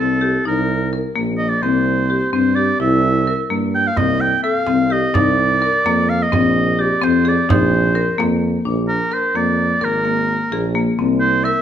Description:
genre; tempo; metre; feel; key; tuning
contemporary instrumental, chamber music in an uneven meter; 256 BPM (eighths); 5/8; straight; unclear; A4 = 436 Hz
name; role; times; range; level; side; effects
warm oboe; melody; 0.0-11.6 s; A4 to G5; -19 LUFS; right 2 dB; none
marimba with hard mallets; arpeggios; 0.0-11.6 s; Bb3 to Bb4; -19 LUFS; left 6 dB; none
mellow tuba; bass; 0.0-11.6 s; Ab1 to G2; -20 LUFS; right 4 dB; none
frame drum; percussion; 4.0-8.4 s; none; -21 LUFS; right 3 dB; none
room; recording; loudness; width
moderate recital hall reverb, RT60 1.5 s; none; -15 LUFS; side -9 dB against mid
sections
0.0-8.6 A section; 8.6-11.6 B section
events
none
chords
0.5 Eb5/C; 1.6 C7; 4.0 F/C; 5.1 Eb5/C; 6.3 Bbsus4; 8.6 Bb; 9.8 Absus2; 11.0 C7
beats
0.22 | 0.46 0.69 0.92 1.16 1.39 | 1.63 1.86 2.10 2.33 2.56 | 2.80 3.03 3.27 3.50 3.74 | 3.97 4.21 4.44 4.67 4.91 | 5.14 5.38 5.61 5.84 6.08 | 6.31 6.54 6.78 7.01 7.25 | 7.48 7.71 7.95 8.18 8.41 | 8.65 8.88 9.12 9.35 9.58 | 9.81 10.05 10.28 10.52 10.75 | 10.98 11.21 11.45

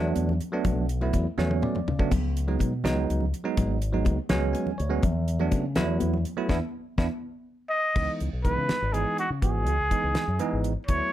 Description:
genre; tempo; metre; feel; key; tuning
electric jazz fusion; 82 BPM (dotted quarters); 6/8; straight; C# minor; A4 = 440 Hz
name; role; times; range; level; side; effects
bell-like tine electric piano; accompaniment; 0.0-11.1 s; E3 to G#5; -29 LUFS; right 3 dB; medium stereo tremolo
fingered electric bass with an envelope filter; bass; 0.0-11.0 s; G#1 to C#3; -28 LUFS; left 1 dB; none
damped 70s drum kit; drums; 0.2-11.0 s; crash cymbal, hi-hat, kick drum, snare drum, splash cymbal, toms; -28 LUFS; equal; none
congas; percussion; 0.2-7.1 s; none; -33 LUFS; left 2 dB; none
trumpet with straight mute; melody; 7.7-11.1 s; F#4 to D#5; -27 LUFS; equal; slapback echo
room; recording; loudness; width
light reverb; none; -24 LUFS; side -13 dB against mid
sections
0.0-8.0 A section; 8.0-11.1 B section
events
drum fill 1.4-2.1, 7.2-8.0; tine electric piano fill 1.4-2.1, 4.3-5.0; band accent 6.5-8.0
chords
0.0 E9sus4; 2.1 C#9sus4; 5.0 E9sus4; 8.0 C#m9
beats
| 0.66 1.39 | 2.12 2.85 | 3.58 4.30 | 5.04 5.76 | 6.50 7.23 | 7.96 8.69 | 9.42 10.15 | 10.88

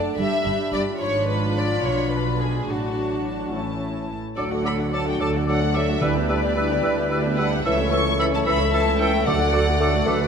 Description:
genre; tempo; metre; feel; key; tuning
quick classical-period movement for symphony orchestra; 73 BPM (dotted quarters); 6/8; straight; D major; A4 = 442 Hz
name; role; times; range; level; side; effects
rich studio violin section; melody; 0.0-10.3 s; D5 to C#6; -29 LUFS; left 3 dB; none
dark studio viola section; accompaniment; 0.0-10.3 s; F#3 to A4; -29 LUFS; right 1 dB; none
dark French horn section; sustained chords; 0.0-10.3 s; E3 to A4; -28 LUFS; left 4 dB; none
warm studio violin section; second line; 0.2-10.3 s; C#4 to F#5; -28 LUFS; left 2 dB; none
rich studio double bass section; bass; 0.2-10.3 s; G1 to D2; -28 LUFS; right 2 dB; none
warm studio cello section; bass; 0.2-10.3 s; C#2 to B2; -28 LUFS; right 3 dB; none
clear oboe; second line; 4.4-10.2 s; A4 to B4; -32 LUFS; right 2 dB; none
mellow hollow concert flute; second line; 4.4-10.1 s; D6 to E6; -31 LUFS; equal; none
warm clarinet; second line; 4.4-10.3 s; A4 to E5; -28 LUFS; equal; none
mellow bassoon; accompaniment; 4.4-10.2 s; E3 to A3; -28 LUFS; right 2 dB; none
timpani; percussion; 6.0-6.8, 9.3-10.0 s; D3; -30 LUFS; right 3 dB; none
room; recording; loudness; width
wet scoring stage reverb, RT60 1.6 s; none; -20 LUFS; side -6 dB against mid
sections
0.0-4.4 A section; 4.4-10.3 B section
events
none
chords
0.2 Em7/G; 1.0 G#dim7; 2.7 D/A; 3.5 A; 4.4 D; 6.0 Em7/D; 7.7 A/C#; 9.3 D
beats
0.18 | 1.00 1.84 | 2.68 3.53 | 4.37 5.20 | 6.02 6.84 | 7.65 8.47 | 9.27 10.08

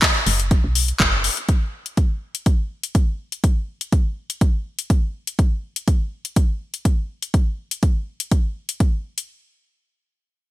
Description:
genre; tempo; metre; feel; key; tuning
deep house; 123 BPM; 4/4; swing 53% on 16ths; unclear; A4 = 439 Hz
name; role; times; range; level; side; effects
warm analog pad; sustained chords; 0.0-1.4 s; none; barely audible; none; none
electronic kick drum; drums; 0.0-8.9 s; none; -18 LUFS; equal; overdrive, studio ambience
house drum kit; drums; 0.0-9.3 s; handclaps, hi-hat; -22 LUFS; left 2 dB; overdrive, studio ambience, gated reverb
woody FM bass; bass; 0.3-1.3 s; F#1 to B1; -22 LUFS; equal; sidechain pumping
room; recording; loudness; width
studio ambience; bright 1980s-style digital production; -19 LUFS; side -16 dB against mid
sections
0.0-9.3 A section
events
none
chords
0.0 B69; 1.5 N.C.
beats
0.02 0.51 1.00 | 1.49 1.97 2.46 2.95 | 3.44 3.92 4.41 4.90 | 5.39 5.88 6.36 6.85 | 7.34 7.83 8.31 8.80

